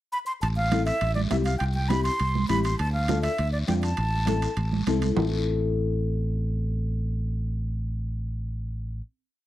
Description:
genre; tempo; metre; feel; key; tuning
latin, cumbia; 202 BPM; 4/4; straight; A minor; A4 = 440 Hz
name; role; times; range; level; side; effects
breathy concert flute; melody; 0.1-4.8 s; D5 to C6; -29 LUFS; right 1 dB; plate reverb
fingered electric bass; bass; 0.4-9.0 s; A1 to F2; -26 LUFS; equal; none
guiro; percussion; 0.4-5.2 s; none; -41 LUFS; left 4 dB; none
timbales; percussion; 0.4-5.2 s; none; -37 LUFS; right 6 dB; none
congas; percussion; 0.6-5.2 s; none; -30 LUFS; right 6 dB; none
nylon-string guitar; accompaniment; 0.7-9.0 s; C4 to C5; -30 LUFS; left 6 dB; plate reverb
room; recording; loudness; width
light reverb; cassette tape; -24 LUFS; side -14 dB against mid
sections
0.0-0.4 pickup bar; 0.4-5.2 A section; 5.2-7.5 final chord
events
none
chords
0.4 Am; 2.8 Dm; 4.0 Am

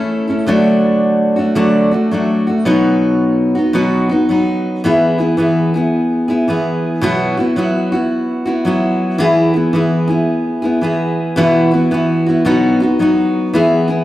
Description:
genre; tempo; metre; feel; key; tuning
country; 110 BPM; 4/4; swing 65% on 8ths; E major; A4 = 441 Hz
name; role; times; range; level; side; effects
picked steel-string acoustic guitar; solo; 0.0-14.0 s; B2 to A4; -12 LUFS; equal; analog delay
room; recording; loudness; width
wet large studio reverb, RT60 0.9 s; heard from further back in the room; -12 LUFS; side -15 dB against mid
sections
0.0-4.8 A section; 4.8-14.0 B section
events
none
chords
0.5 D; 2.7 B; 4.8 E; 7.0 Bsus4; 9.2 E; 11.4 Bsus4; 12.5 B; 13.5 E

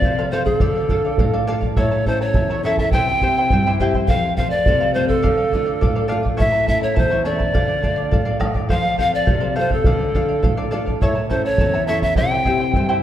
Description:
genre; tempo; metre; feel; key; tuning
andean folk, Andean ensemble; 104 BPM; 2/4; straight; D minor; A4 = 438 Hz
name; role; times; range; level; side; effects
bright reedy polished pan flute; melody; 0.0-13.0 s; A4 to G5; -20 LUFS; equal; none
charango; accompaniment; 0.0-13.0 s; E4 to A5; -25 LUFS; right 1 dB; none
nylon-string guitar; accompaniment; 0.0-13.0 s; E2 to A4; -23 LUFS; left 1 dB; none
bombo; percussion; 0.0-12.9 s; none; -21 LUFS; right 1 dB; none
room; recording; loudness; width
moderate concert hall reverb, RT60 2.3 s; dark, warm production; -16 LUFS; side -11 dB against mid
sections
0.0-8.7 A section; 8.7-13.0 A section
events
none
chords
0.0 F; 0.6 Dm; 1.8 A; 2.9 C; 4.1 F; 5.2 Dm; 6.4 A; 7.6 Dm; 8.7 F; 9.9 Dm; 11.0 A; 12.2 C

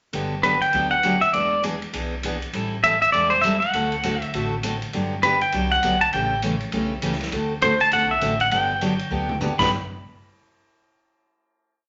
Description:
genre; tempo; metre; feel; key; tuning
country, western swing; 201 BPM; 4/4; swing 62% on 8ths; G major; A4 = 441 Hz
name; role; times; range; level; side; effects
picked steel-string acoustic guitar; accompaniment; 0.1-9.7 s; G2 to A4; -28 LUFS; equal; none
upright bass; bass; 0.1-9.7 s; E1 to D2; -35 LUFS; equal; none
swinging big-band drum kit; drums; 0.1-9.6 s; crash cymbal, hi-hat, kick drum, ride cymbal, snare drum, toms; -35 LUFS; equal; none
pedal steel guitar; melody; 0.4-9.7 s; B4 to B5; -22 LUFS; equal; none
room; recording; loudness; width
wet large studio reverb, RT60 0.9 s; nothing above 7.7 kHz; -22 LUFS; mono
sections
0.1-9.7 A section; 9.7-10.9 final hit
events
drum fill 9.1-9.7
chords
0.1 Gmaj7; 1.3 E7; 2.5 Am7; 3.7 D7; 4.9 Gmaj7; 6.1 A7; 7.3 D7; 8.5 Gmaj7; 9.7 N.C.

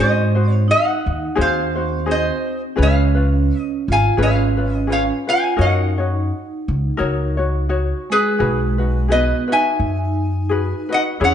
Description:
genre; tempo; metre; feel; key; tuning
Hawaiian; 86 BPM; 4/4; swing 56% on 8ths; unclear; A4 = 440 Hz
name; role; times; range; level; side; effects
lap resonator guitar; melody; 0.0-11.3 s; G#4 to G#5; -20 LUFS; equal; none
vibraphone with soft mallets; second line; 0.0-11.3 s; G#3 to E#4; -25 LUFS; right 5 dB; none
ukulele; accompaniment; 0.0-11.3 s; C#4 to C#5; -24 LUFS; left 4 dB; none
upright bass; bass; 0.0-11.3 s; G#1 to G#2; -19 LUFS; equal; none
room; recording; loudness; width
light reverb; dark, warm production, nothing above 10.5 kHz; -16 LUFS; side -9 dB against mid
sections
0.0-8.4 A section; 8.4-11.3 B section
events
none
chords
0.0 G#7; 2.8 C#7; 5.6 F#6; 8.4 B6

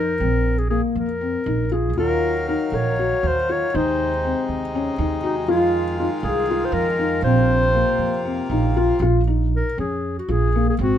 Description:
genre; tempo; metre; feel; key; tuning
contemporary instrumental, chamber music in an uneven meter; 238 BPM (eighths); 7/8; straight; unclear; A4 = 440 Hz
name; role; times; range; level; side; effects
mellow clarinet; melody; 0.0-11.0 s; Eb4 to Db5; -23 LUFS; left 2 dB; none
felt-muted upright piano; arpeggios; 0.0-11.0 s; Bb3 to Bb4; -23 LUFS; left 4 dB; none
upright bass; bass; 0.0-11.0 s; Ab1 to F2; -23 LUFS; right 3 dB; none
hand-pumped harmonium; sustained chords; 2.0-9.0 s; C3 to F5; -27 LUFS; right 1 dB; none
room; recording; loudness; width
light reverb; close, detailed microphones; -18 LUFS; side -10 dB against mid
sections
0.0-9.0 A section; 9.0-11.0 B section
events
none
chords
0.2 Bbsus2; 2.0 Ebmadd9; 3.7 Ab/Eb; 5.5 Fm7; 7.2 Bbsus2; 9.0 Bbm

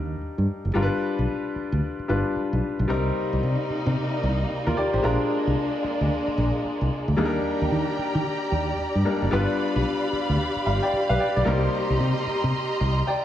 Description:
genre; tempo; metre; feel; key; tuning
R&B; 112 BPM; 4/4; swing 62% on 16ths; Eb major; A4 = 439 Hz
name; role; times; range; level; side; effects
bright concert grand piano; accompaniment; 0.0-13.2 s; G3 to B5; -26 LUFS; left 2 dB; none
fingered electric bass; bass; 0.0-13.1 s; Gb1 to Eb3; -24 LUFS; equal; none
warm studio string section; sustained chords; 2.9-13.2 s; C3 to C6; -28 LUFS; right 1 dB; none
room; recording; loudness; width
light reverb, small room ambience; studio reverb; -22 LUFS; side -11 dB against mid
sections
0.0-7.2 A section; 7.2-13.2 B section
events
none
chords
0.0 Ebmaj7; 0.7 G7; 2.9 Cm7; 5.0 Bb7; 7.2 Ebmaj7; 9.3 G7; 11.5 Cm7

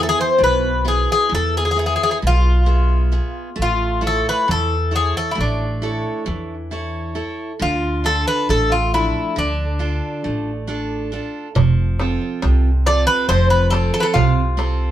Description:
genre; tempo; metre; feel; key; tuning
greek folk, Greek bouzouki band; 135 BPM (eighths); 9/8; straight; unclear; A4 = 440 Hz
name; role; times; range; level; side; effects
Greek bouzouki; melody; 0.0-14.9 s; D4 to D5; -19 LUFS; left 1 dB; none
picked steel-string acoustic guitar; accompaniment; 0.0-14.9 s; B2 to E5; -25 LUFS; right 2 dB; none
upright bass; bass; 0.0-14.9 s; F1 to E2; -20 LUFS; equal; none
darbuka; percussion; 11.6-14.8 s; none; -19 LUFS; right 4 dB; none
room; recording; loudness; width
moderate studio reverb, RT60 0.5 s; band playing live in one room; -16 LUFS; side -12 dB against mid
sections
0.0-11.6 A section; 11.6-14.9 B section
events
speeding up 0.0-14.9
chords
0.0 E; 3.6 A; 7.6 Dm; 11.6 F

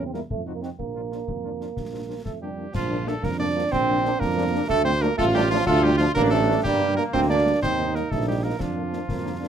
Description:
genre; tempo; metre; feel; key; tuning
military-style march for wind band; 123 BPM (dotted quarters); 6/8; straight; Bb major; A4 = 441 Hz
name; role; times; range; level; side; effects
warm cornet; melody; 0.0-9.5 s; F4 to D5; -28 LUFS; equal; none
warm euphonium; second line; 0.0-9.5 s; F3 to D4; -26 LUFS; right 5 dB; none
mellow French horn section; accompaniment; 0.0-9.5 s; F3 to E4; -31 LUFS; left 6 dB; none
mellow tuba; bass; 0.0-9.5 s; A1 to G2; -26 LUFS; right 3 dB; none
concert snare drum, concert bass drum and clash cymbals; drums; 0.1-9.5 s; none; -33 LUFS; left 2 dB; none
warm trombone section; sustained chords; 2.7-9.5 s; Bb3 to F4; -28 LUFS; equal; none
room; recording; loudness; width
moderate studio ambience, RT60 0.5 s; close, detailed microphones; -21 LUFS; side -8 dB against mid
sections
0.0-2.7 A section; 2.7-9.5 A section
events
none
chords
0.3 F7b9; 0.8 Bb; 4.7 Dm; 6.6 Gm; 7.6 Eb; 8.6 Bb/F

